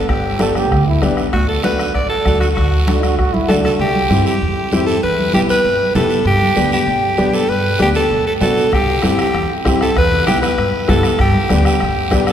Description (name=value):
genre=latin, cumbia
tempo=194 BPM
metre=4/4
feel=straight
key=G major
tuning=A4 = 440 Hz
part: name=raspy alto saxophone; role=melody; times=0.0-12.3 s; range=F#4 to D5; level=-17 LUFS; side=right 1 dB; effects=none
part: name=upright bass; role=bass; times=0.0-12.3 s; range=G1 to B2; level=-19 LUFS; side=equal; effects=none
part: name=bombo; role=percussion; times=0.1-3.8, 8.7-12.3 s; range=none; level=-21 LUFS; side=equal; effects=none
part: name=congas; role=percussion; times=0.1-12.3 s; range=none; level=-22 LUFS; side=right 1 dB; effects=none
part: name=guiro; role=percussion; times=0.1-12.3 s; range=none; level=-28 LUFS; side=right 4 dB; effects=none
part: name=clear trombone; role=second line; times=0.4-3.8 s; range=D4 to A4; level=-22 LUFS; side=right 3 dB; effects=none
part: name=clear upright piano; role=accompaniment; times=0.4-12.3 s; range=A3 to G4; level=-20 LUFS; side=left 2 dB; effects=none
room=wet church reverb, RT60 2.9 s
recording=recorded in a church or concert hall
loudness=-13 LUFS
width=side -9 dB against mid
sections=0.0-3.8 A section; 3.8-12.3 B section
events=drum fill 3.3-3.8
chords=0.0 G; 1.3 D; 3.8 C; 5.0 Em; 6.3 Gadd9; 8.7 C; 10.0 Em; 11.2 G